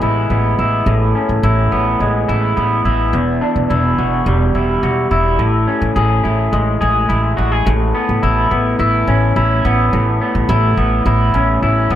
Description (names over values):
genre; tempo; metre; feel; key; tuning
dream pop; 106 BPM; 4/4; straight; A major; A4 = 440 Hz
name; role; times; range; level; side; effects
electric guitar through a small old amp; arpeggios; 0.0-12.0 s; E2 to G#4; -15 LUFS; equal; lush chorus, analog delay
upright bass; bass; 0.0-12.0 s; E1 to A1; -16 LUFS; equal; none
room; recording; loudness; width
moderate spring reverb, RT60 1.3 s; echo-heavy mix; -13 LUFS; side -11 dB against mid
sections
0.0-7.7 A section; 7.7-12.0 B section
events
none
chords
0.0 Amaj9; 3.1 Em9; 5.4 Amaj7; 7.7 Aadd9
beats
0.31 | 0.87 1.44 2.00 2.57 | 3.14 3.70 4.27 4.83 | 5.40 5.97 6.53 7.10 | 7.67 8.23 8.80 9.36 | 9.93 10.50 11.06 11.63